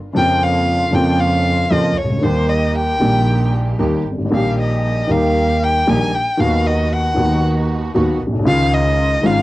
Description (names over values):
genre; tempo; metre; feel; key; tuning
tango; 116 BPM; 4/4; rubato; unclear; A4 = 440 Hz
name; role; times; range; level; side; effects
dark baby grand piano; accompaniment; 0.1-9.4 s; G1 to G4; -18 LUFS; equal; cassette tape
warm violin; second line; 0.2-9.4 s; C5 to Ab5; -19 LUFS; left 1 dB; cassette tape
rich studio string section; stabs; 0.2-9.4 s; Bb3 to G4; -29 LUFS; right 5 dB; cassette tape
warm double bass; bass; 0.2-9.4 s; Ab1 to F2; -20 LUFS; right 1 dB; none
room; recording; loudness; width
moderate booth ambience, RT60 0.2 s; home recording on cassette, faint mains hum; -14 LUFS; side -17 dB against mid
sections
0.0-9.4 A section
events
violin solo 0.0-9.4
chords
0.2 Bbm/F; 2.2 Eb; 6.4 B/D#; 8.5 Dbadd9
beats
| 0.16 0.67 1.19 1.71 | 2.23 2.75 3.27 3.80 | 4.32 4.84 5.37 5.89 | 6.40 6.92 7.43 7.95 | 8.47 8.99